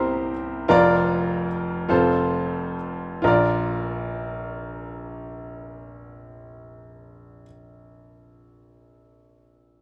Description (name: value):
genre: gospel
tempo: 42-54 BPM (dotted quarters)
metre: 6/8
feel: straight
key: Bb major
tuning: A4 = 440 Hz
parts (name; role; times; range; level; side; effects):
- clear grand piano; accompaniment; 0.0-9.8 s; F1 to E5; -24 LUFS; equal; none
room: moderate plate reverb, RT60 2.6 s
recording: rough home demo mix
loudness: -23 LUFS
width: mono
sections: 0.0-3.2 A section; 3.2-9.0 B section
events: slowing down 0.0-3.2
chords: 0.0 C7; 0.7 Bb/F; 1.9 F; 3.2 Bb